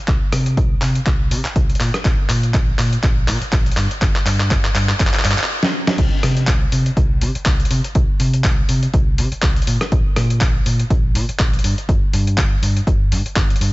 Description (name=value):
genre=filtered disco house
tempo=122 BPM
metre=4/4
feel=swing 56% on 16ths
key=unclear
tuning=A4 = 440 Hz
part: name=vintage muted fingered electric bass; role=bass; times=0.1-13.7 s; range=G1 to C3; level=-19 LUFS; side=equal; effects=sidechain pumping, low-pass filter
part: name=dusty soul sampler-style drum kit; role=drums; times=0.1-13.7 s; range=crash cymbal, handclaps, hi-hat, rim click, snare drum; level=-22 LUFS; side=equal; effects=sidechain pumping on hats, sidechain pumping on cymbals
part: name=electronic kick drum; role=drums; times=0.1-13.5 s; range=none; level=-18 LUFS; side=equal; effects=none
room=little or no reverb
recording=nothing above 7.8 kHz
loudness=-15 LUFS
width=side -19 dB against mid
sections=0.0-6.0 A section; 6.0-13.7 B section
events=build-up 0.0-6.0; drum fill 0.0-5.5, 5.6-6.0; filter sweep on fingered electric bass 0.0-6.0; stop 5.5-6.0; drop 6.0-13.7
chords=none